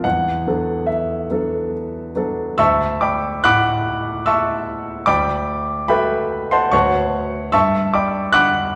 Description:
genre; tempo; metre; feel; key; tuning
classical, impressionist solo piano; 72 BPM; 3/4; uneven beats, rubato; D major; A4 = 441 Hz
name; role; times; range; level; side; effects
clear grand piano; solo; 0.0-8.8 s; D2 to F#6; -19 LUFS; equal; none
room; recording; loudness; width
wet recital hall reverb, RT60 1.8 s; recorded in a church or concert hall; -19 LUFS; mono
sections
0.0-2.6 A section; 2.6-8.8 B section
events
none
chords
0.0 E9sus4; 2.6 Dmaj7; 5.1 Gmaj9/D; 6.7 Bm9/D; 7.5 Gmaj7#11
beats
| 0.04 0.88 1.72 | 2.58 3.44 4.26 | 5.07 5.89 6.72 | 7.53 8.33

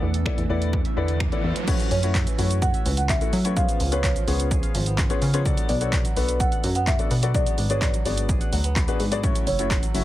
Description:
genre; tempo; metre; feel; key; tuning
dance-pop; 127 BPM; 4/4; straight; F# minor; A4 = 441 Hz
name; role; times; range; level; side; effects
clear grand piano; accompaniment; 0.0-10.0 s; A3 to B5; -29 LUFS; left 6 dB; sidechain pumping
glassy FM pad; sustained chords; 0.0-1.7, 9.9-10.0 s; D3 to F#4; -35 LUFS; right 4 dB; ensemble chorus, built-in reverb, sidechain pumping
kora; arpeggios; 0.0-10.0 s; E3 to F#5; -35 LUFS; right 3 dB; sidechain pumping, digital delay
plucky analog bass; bass; 0.0-10.0 s; F#1 to F#3; -24 LUFS; equal; sidechain pumping
riser; sound effects; 0.8-1.7 s; none; -34 LUFS; right 4 dB; none
punchy analog drum machine; drums; 0.1-10.0 s; crash cymbal, finger snaps, handclaps, hi-hat, kick drum, shaker; -24 LUFS; equal; none
marimba with soft mallets; melody; 1.9-10.0 s; C#5 to F#5; -29 LUFS; right 2 dB; digital delay
room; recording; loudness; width
little or no reverb; heavily compressed radio sound; -20 LUFS; side -14 dB against mid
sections
0.0-1.7 A section; 1.7-10.0 B section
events
riser 0.8-1.7; grand piano fill 8.3-9.2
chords
0.0 E7sus4; 1.7 F#m7; 3.6 C#7; 5.5 Bm7; 7.3 G#m7b5; 9.2 F#m7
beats
0.26 0.73 1.20 | 1.68 2.15 2.62 3.09 | 3.57 4.04 4.51 4.98 | 5.46 5.93 6.40 6.87 | 7.35 7.82 8.29 8.76 | 9.23 9.71

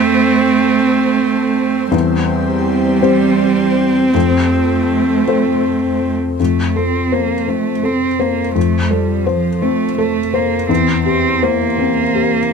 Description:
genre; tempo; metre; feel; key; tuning
neoclassical piano and strings; 55 BPM (dotted quarters); 6/8; rubato; F major; A4 = 440 Hz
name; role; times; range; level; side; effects
dark cello; second line; 0.0-12.5 s; F3 to C4; -17 LUFS; right 8 dB; none
dark viola; accompaniment; 0.0-6.1 s; C4; -16 LUFS; right 2 dB; none
felt-muted upright piano; accompaniment; 0.0-12.5 s; E2 to C5; -17 LUFS; left 6 dB; none
soft additive organ-like pad; sustained chords; 0.0-6.4 s; C4 to C5; -24 LUFS; equal; ensemble chorus, built-in reverb
room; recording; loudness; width
little or no reverb; close, detailed microphones; -13 LUFS; side -5 dB against mid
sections
0.0-6.4 A section; 6.4-12.5 B section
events
none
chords
0.0 F (rootless); 1.9 C/E; 4.1 F; 10.7 C/E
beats
0.85 | 1.93 3.03 | 4.15 5.27 | 6.39 7.48 | 8.56 9.63 | 10.70 11.79

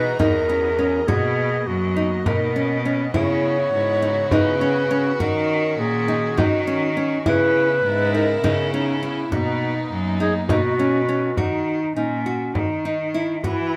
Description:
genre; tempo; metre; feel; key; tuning
contemporary instrumental, chamber music in an uneven meter; 204 BPM (eighths); 7/8; straight; Eb phrygian; A4 = 442 Hz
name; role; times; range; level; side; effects
breathy clarinet; melody; 0.0-13.8 s; Db4 to Db5; -25 LUFS; equal; none
rich chamber string section; sustained chords; 0.0-11.4 s; Db3 to A#5; -33 LUFS; equal; none
nylon-string guitar; arpeggios; 0.0-13.8 s; Db4 to F#4; -26 LUFS; equal; none
bright cello; bass; 0.0-13.8 s; E2 to E3; -27 LUFS; equal; none
frame drum; percussion; 0.2-13.7 s; none; -27 LUFS; equal; none
room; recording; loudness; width
light reverb; close, detailed microphones; -21 LUFS; mono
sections
0.0-11.4 A section; 11.4-13.8 B section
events
none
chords
0.0 Emaj9#11; 1.1 Bmaj9; 3.1 Dbm11; 5.2 Ebm7; 7.3 Dbm7; 9.3 Bmaj9; 11.4 Ebm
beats
0.20 0.49 0.79 | 1.08 1.38 1.67 1.97 2.26 2.56 2.85 | 3.14 3.44 3.73 4.03 4.32 4.61 4.91 | 5.20 5.50 5.79 6.08 6.38 6.67 6.97 | 7.26 7.55 7.85 8.14 8.44 8.73 9.02 | 9.32 9.61 9.90 10.20 10.49 10.79 11.08 | 11.38 11.67 11.97 12.26 12.55 12.85 13.14 | 13.44 13.73

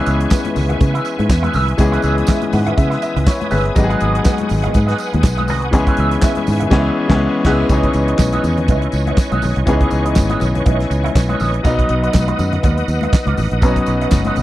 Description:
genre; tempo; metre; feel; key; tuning
disco; 122 BPM; 4/4; swing 56% on 16ths; C# minor; A4 = 440 Hz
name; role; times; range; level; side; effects
clear baby grand piano; accompaniment; 0.0-14.4 s; E3 to F#5; -19 LUFS; left 3 dB; none
electric guitar with an envelope filter; accompaniment; 0.0-14.4 s; E4 to F#5; -24 LUFS; right 5 dB; wah, spring reverb
bright tonewheel organ; sustained chords; 0.0-14.4 s; B4 to D#6; -25 LUFS; equal; chorus vibrato, fast rotary speaker
fingered electric bass; bass; 0.1-14.4 s; F#1 to C#3; -18 LUFS; right 1 dB; none
damped 70s drum kit; drums; 0.1-14.4 s; crash cymbal, handclaps, hi-hat, kick drum, snare drum; -15 LUFS; equal; none
tambourine; percussion; 0.1-14.4 s; none; -36 LUFS; right 6 dB; none
congas; percussion; 0.3-14.4 s; none; -26 LUFS; left 5 dB; none
room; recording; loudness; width
little or no reverb; dry, close 1970s-style studio recording; -13 LUFS; side -15 dB against mid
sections
0.0-7.7 A section; 7.7-14.4 B section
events
grand piano fill 2.3-3.8; band accent 6.7-7.7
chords
0.0 C#m7; 3.8 G#m7; 5.7 C#m7; 7.7 C#m9; 11.6 B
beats
0.31 0.81 1.30 | 1.79 2.28 2.77 3.27 | 3.76 4.25 4.75 5.24 | 5.73 6.22 6.72 7.21 | 7.70 8.20 8.69 9.18 | 9.68 10.17 10.66 11.15 | 11.65 12.14 12.63 13.13 | 13.62 14.12

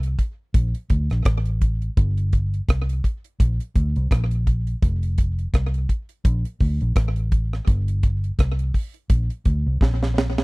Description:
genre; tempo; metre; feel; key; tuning
roots reggae; 84 BPM; 4/4; swing 56% on 16ths; unclear; A4 = 439 Hz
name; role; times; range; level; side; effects
vintage muted fingered electric bass; bass; 0.0-10.4 s; F1 to D2; -22 LUFS; equal; none
deep reggae drum kit; drums; 0.0-10.4 s; hi-hat, kick drum, rim click, snare drum; -20 LUFS; equal; none
room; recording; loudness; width
little or no reverb; dry, close 1970s-style studio recording; -20 LUFS; side -26 dB against mid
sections
0.0-10.4 A section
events
drum fill 9.8-10.4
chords
none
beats
0.55 1.26 | 1.97 2.69 3.40 4.11 | 4.83 5.54 6.25 6.96 | 7.68 8.39 9.10 9.81

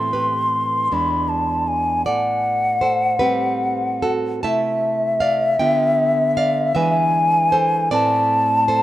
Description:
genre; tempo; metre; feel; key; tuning
romantic duo for flute and classical guitar; 52 BPM (dotted quarters); 6/8; rubato; A minor from 4.4 s; A4 = 440 Hz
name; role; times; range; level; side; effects
mellow hollow silver concert flute; melody; 0.0-8.8 s; E5 to C6; -18 LUFS; left 1 dB; none
nylon-string guitar; accompaniment; 0.0-8.8 s; E2 to A5; -22 LUFS; right 3 dB; none
room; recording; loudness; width
moderate plate reverb, RT60 3.5 s; rough home demo mix; -16 LUFS; side -14 dB against mid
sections
0.0-8.8 A section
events
none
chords
0.0 Am; 0.9 E7; 2.1 Am7; 4.4 Am/C; 5.6 Bdim/D; 6.8 E7; 7.9 Am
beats
0.92 | 2.07 3.21 | 4.45 5.60 | 6.76 7.92

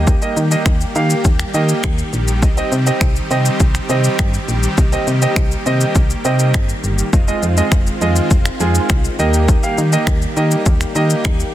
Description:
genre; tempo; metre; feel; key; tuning
dance-pop; 102 BPM; 4/4; straight; C minor; A4 = 439 Hz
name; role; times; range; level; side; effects
clear baby grand piano; accompaniment; 0.0-11.4 s; Ab3 to F5; -20 LUFS; right 3 dB; sidechain pumping
supersaw chords; sustained chords; 0.0-11.5 s; Eb3 to G4; -23 LUFS; left 1 dB; sidechain pumping
solid FM bass; bass; 0.0-11.4 s; F1 to Eb3; -17 LUFS; equal; sidechain pumping
punchy analog drum machine; drums; 0.1-11.5 s; finger snaps, kick drum, shaker; -16 LUFS; equal; soft clipping on snare
room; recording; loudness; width
digital ambience; dense, heavily limited modern master; -13 LUFS; side -13 dB against mid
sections
0.0-11.5 A section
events
none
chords
0.0 Eb; 2.4 Cm; 7.1 Fm7; 9.2 Eb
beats
| 0.07 0.66 1.25 1.84 | 2.43 3.01 3.60 4.19 | 4.78 5.37 5.96 6.54 | 7.13 7.72 8.31 8.90 | 9.48 10.07 10.66 11.25

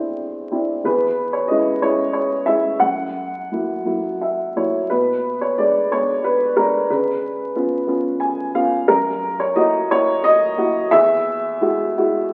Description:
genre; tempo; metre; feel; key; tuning
classical, lyrical solo piano; 56-62 BPM (dotted quarters); 6/8; rubato; E lydian; A4 = 440 Hz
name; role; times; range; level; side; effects
dark upright piano; solo; 0.0-12.3 s; E2 to G#5; -19 LUFS; equal; none
room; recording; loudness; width
moderate scoring stage reverb, RT60 1.8 s; very old 78 rpm record, vinyl crackle; -19 LUFS; mono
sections
0.0-12.3 A section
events
upright piano fill 3.9-4.9, 7.9-8.9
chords
0.0 Cadd9/E; 0.9 E6; 2.8 F#7; 4.9 Bm6; 6.9 C#7; 8.9 F#7; 10.9 Eadd9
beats
| 0.85 1.82 | 2.82 3.87 | 4.91 5.92 | 6.91 7.89 | 8.89 9.90 | 10.91 11.96

